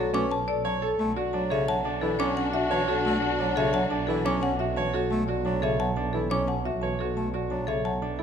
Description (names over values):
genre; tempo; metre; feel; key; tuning
classical, minimalist pattern music; 175 BPM; 6/4; straight; unclear; A4 = 437 Hz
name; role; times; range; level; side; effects
marimba with medium hard mallets; melody; 0.0-8.2 s; A4 to A5; -31 LUFS; left 8 dB; none
clear bass clarinet; accompaniment; 0.0-8.2 s; C#3 to C#4; -32 LUFS; equal; none
bright grand piano; arpeggios; 0.0-8.2 s; C#4 to C#5; -30 LUFS; right 4 dB; none
warm double bass; bass; 0.0-8.2 s; B1; -32 LUFS; right 4 dB; none
xylophone with rubber mallets; arpeggios; 0.1-8.1 s; E5 to D6; -33 LUFS; left 2 dB; none
warm clarinet; second line; 1.0-4.9 s; D4; -34 LUFS; right 2 dB; none
dark symphonic string section; sustained chords; 1.0-4.9 s; D4 to F#4; -32 LUFS; left 5 dB; none
room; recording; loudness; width
wet recital hall reverb, RT60 1.8 s; none; -24 LUFS; side -8 dB against mid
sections
0.0-8.2 A section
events
none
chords
0.0 Bm7; 1.0 Dadd9/B